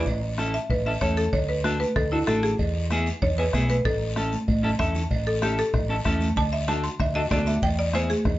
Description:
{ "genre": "latin, cumbia", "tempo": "191 BPM", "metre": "4/4", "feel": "straight", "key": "A major", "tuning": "A4 = 440 Hz", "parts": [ { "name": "hollow-body short-scale fingered electric bass", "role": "bass", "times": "0.0-8.4 s", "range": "A1 to E2", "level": "-27 LUFS", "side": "equal", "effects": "none" }, { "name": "bombo", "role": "percussion", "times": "0.1-8.4 s", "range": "none", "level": "-29 LUFS", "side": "left 1 dB", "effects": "none" }, { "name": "cowbell and timbales", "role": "percussion", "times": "0.1-8.4 s", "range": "none", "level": "-36 LUFS", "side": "right 5 dB", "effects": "none" }, { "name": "guiro", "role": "percussion", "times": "0.1-8.4 s", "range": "none", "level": "-40 LUFS", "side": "left 4 dB", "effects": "none" }, { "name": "congas", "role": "percussion", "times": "0.2-8.4 s", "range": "none", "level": "-31 LUFS", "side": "right 1 dB", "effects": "none" }, { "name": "clean electric guitar", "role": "accompaniment", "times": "0.4-8.1 s", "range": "B3 to A4", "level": "-29 LUFS", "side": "left 1 dB", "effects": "none" }, { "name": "buzzing marimba with hard mallets", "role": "melody", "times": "0.5-8.4 s", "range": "E4 to C6", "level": "-27 LUFS", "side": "equal", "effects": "none" } ], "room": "wet studio reverb, RT60 0.5 s", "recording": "heard from further back in the room, nothing above 7.6 kHz", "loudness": "-22 LUFS", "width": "side -15 dB against mid", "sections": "0.1-8.4 A section", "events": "marimba solo 0.1-8.4; drum fill 4.5-5.1", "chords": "0.1 A; 1.3 D; 2.6 E; 3.9 A; 6.4 D; 7.6 E", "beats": "| 0.07 0.39 0.70 1.02 | 1.33 1.65 1.96 2.28 | 2.59 2.91 3.22 3.54 | 3.85 4.17 4.48 4.80 | 5.11 5.43 5.74 6.05 | 6.37 6.68 7.00 7.31 | 7.63 7.94 8.26" }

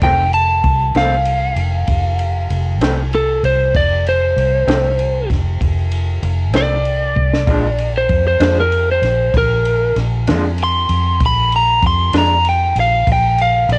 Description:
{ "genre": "slow blues", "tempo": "64 BPM (dotted quarters)", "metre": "12/8", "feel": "straight", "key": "F mixolydian", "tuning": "A4 = 440 Hz", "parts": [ { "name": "lightly driven lead guitar", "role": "melody", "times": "0.0-13.8 s", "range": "A4 to C6", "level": "-18 LUFS", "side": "equal", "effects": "cassette tape" }, { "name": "electric guitar through a small old amp", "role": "accompaniment", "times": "0.0-12.3 s", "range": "F2 to D4", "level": "-23 LUFS", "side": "equal", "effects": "tremolo, cassette tape" }, { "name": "vintage muted fingered electric bass", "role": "bass", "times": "0.0-13.8 s", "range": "F1 to F2", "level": "-20 LUFS", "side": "equal", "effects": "none" }, { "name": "compact cocktail drum kit", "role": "drums", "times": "0.0-13.8 s", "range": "kick drum, ride cymbal, snare drum", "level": "-24 LUFS", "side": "equal", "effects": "none" } ], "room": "little or no reverb", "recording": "home recording on cassette", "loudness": "-15 LUFS", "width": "mono", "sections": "0.0-13.8 A section", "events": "lead electric guitar solo 0.0-13.8; drum fill 7.2-7.5", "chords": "0.0 F7; 7.5 Bb5", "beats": "| 0.02 0.96 1.89 2.82 | 3.75 4.69 5.62 6.55 | 7.48 8.42 9.35 10.28 | 11.21 12.14 13.08" }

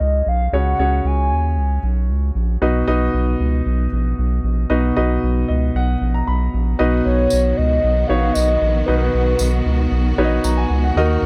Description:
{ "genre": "piano-driven pop", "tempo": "115 BPM", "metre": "4/4", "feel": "straight", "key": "unclear", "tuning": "A4 = 440 Hz", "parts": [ { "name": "hollow clarinet-like synth lead", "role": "melody", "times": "0.0-1.8, 7.0-9.4 s", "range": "A#4 to G#5", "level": "-23 LUFS", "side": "equal", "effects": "chorus" }, { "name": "clear baby grand piano", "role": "accompaniment", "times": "0.0-11.3 s", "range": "B2 to B5", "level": "-23 LUFS", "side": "equal", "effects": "none" }, { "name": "round analog bass", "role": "bass", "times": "0.0-11.3 s", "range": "A#1 to D#2", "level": "-20 LUFS", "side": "equal", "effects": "none" }, { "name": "clear studio string section", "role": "sustained chords", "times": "6.8-11.3 s", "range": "D#3 to F#4", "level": "-30 LUFS", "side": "equal", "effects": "none" }, { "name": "tambourine", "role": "percussion", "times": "7.3-10.6 s", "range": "none", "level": "-31 LUFS", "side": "equal", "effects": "none" } ], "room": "little or no reverb", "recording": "dry, close 1970s-style studio recording", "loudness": "-18 LUFS", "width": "mono", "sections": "0.0-6.8 A section; 6.8-11.3 B section", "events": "grand piano fill 5.2-6.8", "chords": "0.0 C#add9; 0.5 F#sus2/C#; 2.6 B", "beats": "0.02 | 0.54 1.06 1.58 2.10 | 2.62 3.14 3.67 4.19 | 4.71 5.23 5.75 6.27 | 6.79 7.31 7.83 8.36 | 8.88 9.40 9.92 10.44 | 10.96" }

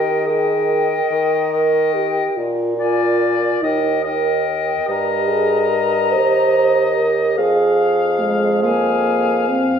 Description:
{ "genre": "classical, slow romantic movement for wind quintet", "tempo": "48 BPM (dotted quarters)", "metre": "6/8", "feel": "rubato", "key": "Eb major from 4.9 s", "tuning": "A4 = 442 Hz", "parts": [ { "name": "concert flute", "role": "melody", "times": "0.0-9.8 s", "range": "F5 to Bb5", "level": "-25 LUFS", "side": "left 8 dB", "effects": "none" }, { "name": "clear oboe", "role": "second line", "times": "0.0-9.8 s", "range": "D5 to F5", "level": "-22 LUFS", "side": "left 3 dB", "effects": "none" }, { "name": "mellow French horn", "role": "accompaniment", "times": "0.0-9.8 s", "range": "Ab3 to C5", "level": "-19 LUFS", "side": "equal", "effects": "none" }, { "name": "mellow clarinet", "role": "accompaniment", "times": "0.0-9.8 s", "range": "G4 to Bb4", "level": "-24 LUFS", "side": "right 6 dB", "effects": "none" }, { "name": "warm bassoon", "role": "bass", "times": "0.0-9.8 s", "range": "Eb2 to Eb3", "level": "-22 LUFS", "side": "right 3 dB", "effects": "none" } ], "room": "wet recital hall reverb, RT60 1.4 s", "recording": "minimal, uncompressed stereo recording", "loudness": "-15 LUFS", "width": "side -7 dB against mid", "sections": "0.0-9.8 A section", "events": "none", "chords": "0.0 Eb; 2.4 Bb7; 3.6 Eb; 7.4 Fmadd11", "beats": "1.10 | 2.37 3.63 | 4.88 6.14 | 7.39 8.64" }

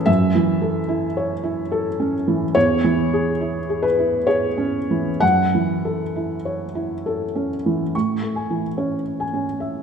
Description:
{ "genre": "neoclassical minimalist piano", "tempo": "62-75 BPM", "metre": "3/4", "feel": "rubato", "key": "F# minor", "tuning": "A4 = 440 Hz", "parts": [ { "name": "felt-muted upright piano", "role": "solo", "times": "0.0-9.8 s", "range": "E2 to C#6", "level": "-19 LUFS", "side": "equal", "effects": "none" } ], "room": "wet scoring stage reverb, RT60 1.6 s", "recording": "recorded in a church or concert hall", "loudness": "-19 LUFS", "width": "side -7 dB against mid", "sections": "0.0-7.9 A section; 7.9-9.8 B section", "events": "none", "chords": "0.1 F#m7; 2.5 C#m/E; 5.2 F#m7; 7.9 Amaj7", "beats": "| 0.08 0.89 1.71 | 2.55 3.40 4.27 | 5.22 6.15 7.05 | 7.94 8.78 9.60" }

